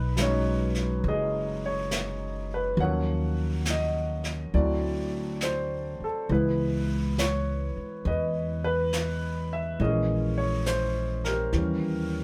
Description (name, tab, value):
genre	jazz ballad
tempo	69 BPM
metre	4/4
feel	swing 67% on 8ths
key	unclear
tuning	A4 = 440 Hz
part	warm concert grand piano	accompaniment	0.0-12.2 s	E3 to F#5	-31 LUFS	equal	none
part	upright bass	bass	0.0-12.2 s	F#1 to E2	-31 LUFS	equal	none
part	jazz brush drum kit	drums	0.2-12.2 s	brushed snare drum, hi-hat, snare drum	-38 LUFS	equal	none
room	moderate studio reverb, RT60 0.6 s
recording	band playing live in one room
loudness	-28 LUFS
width	mono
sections	0.0-12.2 A section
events	none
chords	0.0 B69; 2.8 D#m7; 4.5 D9; 6.3 C#m7; 9.8 A#m7b5; 11.5 D#7b9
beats	0.17 1.04 1.91 | 2.78 3.65 4.52 5.41 | 6.29 7.18 8.05 8.93 | 9.80 10.66 11.53